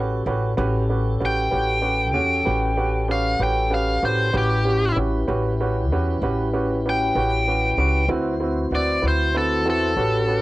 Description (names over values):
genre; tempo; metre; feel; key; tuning
slow blues; 64 BPM (dotted quarters); 12/8; straight; unclear; A4 = 440 Hz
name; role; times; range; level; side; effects
clear upright piano; accompaniment; 0.0-10.4 s; C4 to C#5; -26 LUFS; right 3 dB; none
mellow tonewheel organ; sustained chords; 0.0-10.4 s; C4 to C5; -27 LUFS; left 1 dB; overdrive, slow rotary speaker
upright bass; bass; 0.0-10.4 s; A1 to E2; -24 LUFS; left 1 dB; none
biting overdriven guitar; melody; 1.3-10.4 s; G4 to G5; -22 LUFS; left 1 dB; cassette tape
room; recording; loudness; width
light reverb; home recording on cassette; -19 LUFS; side -18 dB against mid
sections
0.0-10.4 A section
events
none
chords
0.0 A13; 8.1 D13